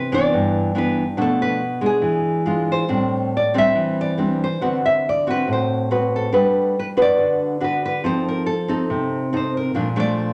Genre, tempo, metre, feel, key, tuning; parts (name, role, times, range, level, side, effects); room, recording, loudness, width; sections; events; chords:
bossa nova; 140 BPM; 4/4; straight; A4 = 440 Hz
nylon-string guitar; melody; 0.0-10.3 s; Ab4 to E5; -26 LUFS; equal
nylon-string guitar; accompaniment; 0.0-10.3 s; G2 to B4; -21 LUFS; equal
wet large studio reverb, RT60 0.9 s; -20 LUFS; mono
0.0-9.7 A section
0.0 Cmaj9; 1.2 Bm7b5; 2.0 E7b9; 2.9 Am7; 4.6 D6; 6.3 Gmaj7; 8.0 F7; 9.7 Bbmaj7